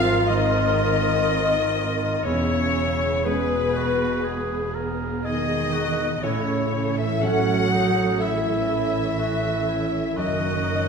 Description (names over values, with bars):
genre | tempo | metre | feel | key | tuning
cinematic, emotional film score for orchestra | 61 BPM | 4/4 | rubato | unclear | A4 = 440 Hz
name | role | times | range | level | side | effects
rich studio violin section | melody | 0.0-10.9 s | B4 to Gb5 | -34 LUFS | left 2 dB | none
rich violin | melody | 0.0-10.9 s | B4 to Gb5 | -31 LUFS | left 5 dB | none
mellow clarinet | second line | 0.0-10.9 s | B4 to Gb5 | -30 LUFS | left 4 dB | none
silver concert flute | second line | 0.0-10.9 s | B4 to Gb5 | -31 LUFS | left 1 dB | none
warm oboe | second line | 0.0-10.9 s | C#4 to Bb4 | -31 LUFS | right 1 dB | none
warm studio violin section | second line | 0.0-10.9 s | B4 to Gb5 | -32 LUFS | left 2 dB | none
warm grand piano | accompaniment | 0.0-10.9 s | E2 to C#5 | -30 LUFS | right 1 dB | none
warm studio viola section | accompaniment | 0.0-10.9 s | B3 to Bb4 | -29 LUFS | right 1 dB | none
mellow French horn section | sustained chords | 0.0-10.9 s | B3 to Gb4 | -29 LUFS | equal | none
rich studio double bass section | bass | 0.0-10.9 s | E1 to A1 | -29 LUFS | right 3 dB | none
warm studio cello section | bass | 0.0-10.9 s | B2 to Gb3 | -30 LUFS | right 3 dB | none
room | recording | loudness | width
wet recital hall reverb, RT60 1.4 s | recorded in a church or concert hall | -20 LUFS | side -6 dB against mid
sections
0.0-10.9 A section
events
none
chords
0.0 Abadd9; 2.3 E; 6.2 A; 10.2 Gb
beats
0.28 1.26 | 2.26 3.25 4.25 5.24 | 6.23 7.22 8.21 9.19 | 10.17